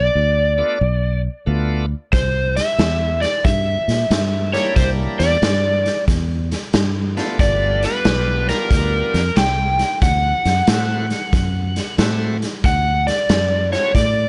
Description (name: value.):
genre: electric blues shuffle.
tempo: 91 BPM.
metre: 4/4.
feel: swing 66% on 8ths.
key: unclear.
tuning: A4 = 439 Hz.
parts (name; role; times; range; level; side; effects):
overdriven slide guitar; melody; 0.0-14.3 s; Bb4 to G5; -22 LUFS; equal; none.
fingered electric bass; bass; 0.0-14.2 s; G1 to Bb2; -22 LUFS; equal; none.
bright tonewheel organ; accompaniment; 0.6-13.9 s; G3 to F#4; -28 LUFS; equal; overdrive, slow rotary speaker.
raw garage drum kit; drums; 2.1-14.2 s; hi-hat, kick drum, snare drum; -23 LUFS; equal; none.
room: light reverb.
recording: nothing above 10.8 kHz.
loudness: -18 LUFS.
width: mono.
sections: 0.0-14.3 A section.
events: none.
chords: 0.0 G9 (rootless); 2.1 C9; 7.4 G9; 10.0 D9.